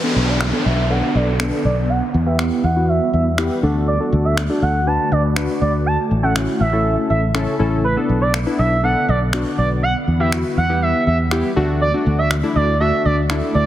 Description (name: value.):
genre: dance-pop.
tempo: 121 BPM.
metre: 4/4.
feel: straight.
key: B minor.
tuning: A4 = 439 Hz.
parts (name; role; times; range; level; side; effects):
expressive portamento lead; melody; 0.0-13.7 s; B4 to A5; -21 LUFS; right 2 dB; chorus, low-pass filter, digital delay.
warm analog keys; accompaniment; 0.0-13.7 s; A3 to B4; -22 LUFS; left 2 dB; chorus, low-pass filter.
ethereal airy pad; sustained chords; 0.0-13.7 s; C#3 to A4; -26 LUFS; right 1 dB; ensemble chorus, built-in reverb, phaser, low-pass filter.
downlifter; sound effects; 0.0-3.9 s; none; -25 LUFS; equal; none.
fingered electric bass; bass; 0.2-13.7 s; A1 to E2; -19 LUFS; equal; none.
electronic finger snaps; drums; 0.4-13.4 s; none; -26 LUFS; equal; overdrive.
room: light reverb, digital ambience.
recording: heavily compressed radio sound, multiband compression.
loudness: -15 LUFS.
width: side -12 dB against mid.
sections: 0.0-13.7 A section.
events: filter sweep 0.0-13.7.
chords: 0.0 Bm7; 1.9 Em; 3.6 D; 5.9 A; 7.8 Bm7; 9.8 Em; 11.6 D.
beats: 0.41 0.90 1.40 | 1.89 2.39 2.89 3.38 | 3.88 4.37 4.87 5.37 | 5.86 6.36 6.85 7.35 | 7.84 8.34 8.84 9.33 | 9.83 10.32 10.82 11.32 | 11.81 12.31 12.80 13.30.